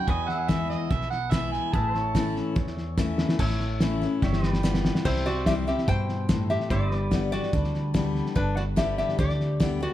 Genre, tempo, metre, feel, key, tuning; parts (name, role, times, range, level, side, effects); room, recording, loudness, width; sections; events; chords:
honky-tonk and classic country; 145 BPM; 4/4; straight; G major from 5.0 s; A4 = 440 Hz
overdriven harmonica; second line; 0.0-2.4 s; D#5 to A5; -29 LUFS; right 4 dB
picked steel-string acoustic guitar; accompaniment; 0.0-9.9 s; E2 to G4; -30 LUFS; left 4 dB
pedal steel guitar; sustained chords; 0.0-9.9 s; G3 to E5; -36 LUFS; right 1 dB
upright bass; bass; 0.1-9.8 s; G1 to G2; -29 LUFS; right 1 dB
cloth-damped thuddy drum kit; drums; 0.1-9.9 s; crash cymbal, hi-hat, kick drum, snare drum; -27 LUFS; equal
lap resonator guitar; melody; 5.1-9.9 s; D4 to G5; -29 LUFS; left 1 dB; tape echo
light reverb; dark, warm production; -23 LUFS; side -13 dB against mid
0.0-3.4 A section; 3.4-5.0 B section; 5.0-9.9 C section
harmonica solo 0.0-3.4; drum fill 3.0-3.4, 4.2-5.0
0.1 E; 1.7 A; 4.2 G7; 5.0 C; 6.7 G